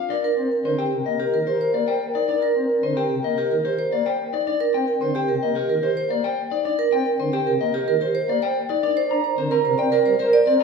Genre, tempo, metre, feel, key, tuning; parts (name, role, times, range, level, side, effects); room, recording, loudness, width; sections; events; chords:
classical, minimalist pattern music; 110 BPM; 4/4; straight; C minor; A4 = 445 Hz
electric guitar at the edge of break-up; melody; 0.0-10.6 s; Bb4 to Bb5; -24 LUFS; left 8 dB
vibraphone with medium hard mallets; arpeggios; 0.0-10.6 s; C4 to D5; -22 LUFS; right 6 dB
clear French horn; second line; 0.1-4.3, 8.8-10.6 s; Bb4; -26 LUFS; left 1 dB
pipe organ, flutes; accompaniment; 0.4-10.6 s; C3 to D4; -28 LUFS; left 3 dB
wet recital hall reverb, RT60 1.4 s; minimal, uncompressed stereo recording; -19 LUFS; side -5 dB against mid
0.1-10.6 A section
0.1 Cm7; 8.8 Gm (rootless)